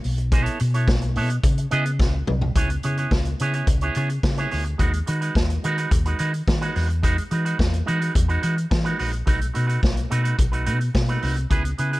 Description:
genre	disco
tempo	107 BPM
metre	4/4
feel	straight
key	C# minor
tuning	A4 = 439 Hz
part	hollow-body short-scale fingered electric bass	bass	0.0-12.0 s	A#1 to E3	-23 LUFS	equal	none
part	vintage drum kit	drums	0.0-12.0 s	hi-hat, kick drum, snare drum, toms	-23 LUFS	equal	none
part	electric guitar with an envelope filter	accompaniment	0.2-12.0 s	G#3 to D#5	-27 LUFS	right 3 dB	none
room	little or no reverb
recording	none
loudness	-20 LUFS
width	side -19 dB against mid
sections	0.0-2.6 A section; 2.6-12.0 B section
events	drum fill 2.0-2.6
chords	0.0 B9sus4; 1.4 C#m9; 2.6 C#m7; 4.8 G#m7/D#; 6.8 Emaj9; 9.3 B7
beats	| 0.32 0.88 1.44 2.00 | 2.56 3.11 3.67 4.23 | 4.79 5.35 5.91 6.47 | 7.03 7.59 8.15 8.71 | 9.27 9.83 10.39 10.95 | 11.51

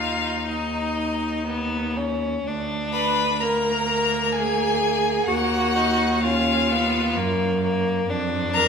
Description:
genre	classical, slow romantic movement for string quartet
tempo	60-66 BPM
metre	3/4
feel	rubato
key	Eb minor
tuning	A4 = 442 Hz
part	clear violin	melody	0.0-8.7 s	Eb5 to Cb6	-24 LUFS	left 6 dB	none
part	rich violin	second line	0.0-8.7 s	Bb3 to Eb4	-27 LUFS	left 3 dB	none
part	clear viola	accompaniment	0.0-8.7 s	Eb4 to Cb5	-26 LUFS	right 4 dB	none
part	rich cello	bass	0.0-8.7 s	D2 to Gb2	-26 LUFS	right 2 dB	none
room	wet recital hall reverb, RT60 1.6 s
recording	minimal, uncompressed stereo recording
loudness	-20 LUFS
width	side -6 dB against mid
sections	0.0-8.7 A section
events	none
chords	0.0 Db9/Eb (rootless); 2.5 Bb7/D; 5.3 Ebm; 8.1 Bb/F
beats	0.48 1.47 | 2.46 3.42 4.34 | 5.28 6.22 7.16 | 8.08

